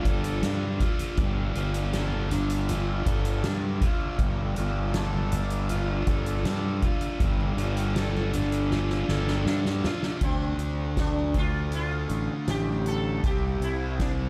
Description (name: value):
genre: psychedelic rock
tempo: 80 BPM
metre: 4/4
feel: straight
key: unclear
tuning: A4 = 439 Hz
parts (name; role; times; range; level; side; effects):
- tonewheel organ; sustained chords; 0.0-10.2 s; D5 to E6; -41 LUFS; equal; slow rotary speaker
- thick fuzz guitar; riff; 0.0-14.3 s; C3 to A4; -33 LUFS; equal; distortion, phaser
- fuzz fingered electric bass; bass; 0.0-14.3 s; G1 to G2; -31 LUFS; equal; overdrive
- congas; percussion; 0.0-10.2 s; none; -38 LUFS; equal; none
- soft-mallet drum kit; drums; 0.1-14.2 s; hi-hat, kick drum, snare drum; -32 LUFS; equal; none
- sitar; melody; 10.2-14.1 s; C4 to A4; -35 LUFS; equal; none
room: studio ambience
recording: none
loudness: -27 LUFS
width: mono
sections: 0.0-10.2 A section; 10.2-14.3 B section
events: drum fill 8.7-10.2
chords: 0.0 Dmadd9/G; 10.2 Dm7; 13.2 C5